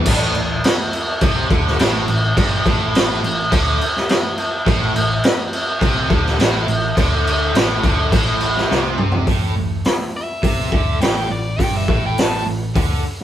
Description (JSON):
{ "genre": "hard rock", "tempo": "104 BPM", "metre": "4/4", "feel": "straight", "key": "A minor", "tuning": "A4 = 440 Hz", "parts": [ { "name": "cranked stack guitar", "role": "riff", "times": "0.0-13.0 s", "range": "G2 to D3", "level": "-25 LUFS", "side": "right 5 dB", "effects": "overdrive, spring reverb" }, { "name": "overdriven electric guitar", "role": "riff", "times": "0.0-13.0 s", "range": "G2 to D3", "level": "-27 LUFS", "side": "left 4 dB", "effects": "tremolo" }, { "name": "tight distorted guitar", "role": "riff", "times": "0.0-9.3 s", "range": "G2 to D3", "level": "-28 LUFS", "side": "equal", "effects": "distortion" }, { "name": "hollow-body short-scale picked electric bass", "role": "bass", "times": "0.1-13.0 s", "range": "G1 to D2", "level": "-23 LUFS", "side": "equal", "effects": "none" }, { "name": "raw garage drum kit", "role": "drums", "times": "0.1-13.2 s", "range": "crash cymbal, hi-hat, kick drum, snare drum, toms", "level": "-17 LUFS", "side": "equal", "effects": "none" }, { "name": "biting lead guitar", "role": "melody", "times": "10.2-12.5 s", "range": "D5 to A5", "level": "-24 LUFS", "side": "equal", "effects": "overdrive" } ], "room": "moderate studio reverb, RT60 0.5 s", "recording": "band playing live in one room", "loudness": "-15 LUFS", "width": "side -11 dB against mid", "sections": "0.1-9.3 A section; 9.3-13.2 B section", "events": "drum fill 8.7-9.3; lead electric guitar solo 9.3-13.2", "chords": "0.1 Am" }